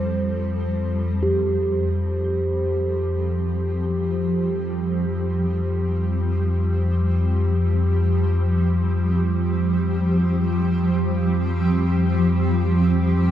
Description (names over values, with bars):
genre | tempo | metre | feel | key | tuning
dark ambient drone | free time | none | none | F major | A4 = 440 Hz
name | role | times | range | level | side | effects
granular cloud pad | sustained chords | 0.0-13.3 s | F3 to A4 | -28 LUFS | left 1 dB | built-in reverb, wide subtle chorus
deep rumbling drone | drone | 0.0-13.3 s | F2 to G3 | -20 LUFS | equal | built-in reverb, ensemble chorus
bronze singing bowl | texture | 0.0-13.3 s | G4 to C5 | -28 LUFS | right 2 dB | none
room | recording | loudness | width
wet huge ambient reverb, RT60 8.1 s | dreamy mix soaked in reverb | -19 LUFS | side -11 dB against mid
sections
0.0-1.2 A section; 1.2-13.3 B section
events
fade-in on ambient pad 1.2-13.3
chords
0.0 Fsus2